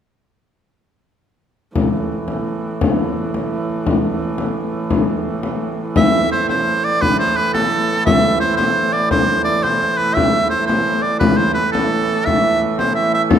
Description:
medieval dance; 114 BPM (dotted quarters); 6/8; straight; A minor; A4 = 443 Hz
dark hurdy-gurdy; drone; 1.8-13.4 s; A2 to E3; -22 LUFS; right 2 dB
frame drum; percussion; 1.8-13.4 s; -19 LUFS; left 3 dB
edgy shawm; melody; 6.0-13.4 s; A4 to E5; -16 LUFS; right 2 dB
wet scoring stage reverb, RT60 1.7 s; -15 LUFS; side -8 dB against mid
1.8-6.0 A section; 6.0-13.4 B section

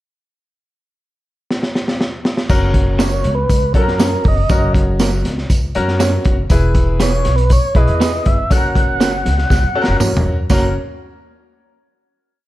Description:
uptempo 1960s-style soul; 120 BPM; 4/4; straight; F# mixolydian; A4 = 441 Hz
crunchy breakbeat drum kit; drums; 1.5-10.6 s; crash cymbal, hi-hat, kick drum, snare drum, toms; -16 LUFS; equal
bright grand piano; accompaniment; 2.5-10.7 s; C#4 to B4; -22 LUFS; left 2 dB
upright bass; bass; 2.5-10.7 s; E1 to F#2; -18 LUFS; equal
tambourine; percussion; 2.5-10.7 s; -31 LUFS; right 4 dB
tonewheel organ; melody; 3.0-10.0 s; A#4 to F#5; -20 LUFS; right 1 dB; overdrive, slow rotary speaker
electric guitar through a small old amp; stabs; 3.0-10.7 s; A#3 to B4; -22 LUFS; right 4 dB
small room ambience; dark, warm production; -13 LUFS; side -15 dB against mid
0.5-2.5 pickup bar; 2.5-10.5 A section; 10.5-12.5 final chord
drum fill 1.5-2.5, 9.5-10.5
0.5 N.C.; 2.5 F#; 6.5 E; 8.5 F#

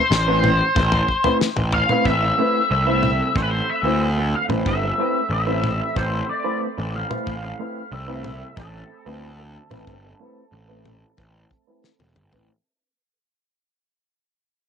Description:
psychedelic rock; 92 BPM; 4/4; straight; A minor; A4 = 441 Hz
octave-fuzz lead guitar; melody; 0.0-11.8 s; A4 to F5; -22 LUFS; left 2 dB; wah, distortion, low-pass filter, tape echo
electric guitar through a small old amp; riff; 0.1-12.5 s; A3 to B4; -24 LUFS; equal; harmonic tremolo, double-tracked left and right, low-pass filter
fuzz picked electric bass; bass; 0.1-12.5 s; E1 to D2; -24 LUFS; equal; overdrive
damped 70s drum kit; drums; 0.1-12.5 s; kick drum, snare drum, toms; -24 LUFS; left 2 dB
percussive tonewheel organ; sustained chords; 2.0-12.4 s; A3 to B5; -35 LUFS; right 15 dB; slow rotary speaker, overdrive, low-pass filter
light reverb, small room ambience; 1960s-style stereo; -18 LUFS; side -7 dB against mid
0.0-12.5 A section
fade-out 0.0-12.5; filter sweep 0.0-12.5; drum fill 11.8-12.5
0.0 Amadd9

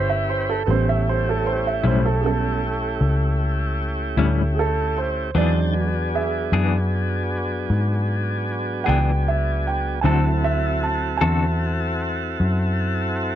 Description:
blues; 51 BPM (dotted quarters); 12/8; straight; A4 = 440 Hz
warm grand piano; accompaniment; 0.0-13.4 s; F#3 to A5; -25 LUFS; right 7 dB
tonewheel organ; sustained chords; 0.0-13.4 s; D#3 to A5; -26 LUFS; equal; slow rotary speaker
vintage muted picked electric bass; bass; 0.0-13.4 s; G1 to G#2; -22 LUFS; left 1 dB
semi-hollow electric guitar; accompaniment; 1.8-11.5 s; A2 to A4; -23 LUFS; left 8 dB; tremolo
little or no reverb; dry, close 1970s-style studio recording; -19 LUFS; side -11 dB against mid
0.0-13.4 A section
grand piano solo 0.0-13.4
0.0 A7; 5.4 E7; 10.0 D7

